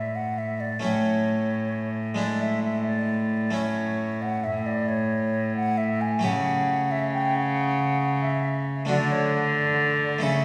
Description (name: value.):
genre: classical, baroque-style sonata movement with continuo.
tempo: 89 BPM (dotted quarters).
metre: 12/8.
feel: rubato.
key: A major, D major from 6.2 s.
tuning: A4 = 440 Hz.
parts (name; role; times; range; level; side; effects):
bright wooden flute; melody; 0.0-10.4 s; C#5 to G#5; -30 LUFS; equal; none.
harpsichord; accompaniment; 0.0-10.4 s; A2 to A4; -32 LUFS; equal; none.
rich cello; bass; 0.0-10.4 s; A2 to D3; -28 LUFS; equal; none.
room: wet recital hall reverb, RT60 1.5 s.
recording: heard from further back in the room.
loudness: -25 LUFS.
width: mono.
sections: 0.0-10.4 A section.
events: none.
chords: 0.0 E7/A; 0.8 A; 2.2 E7/A; 3.6 A; 6.2 A7/C#; 8.9 D.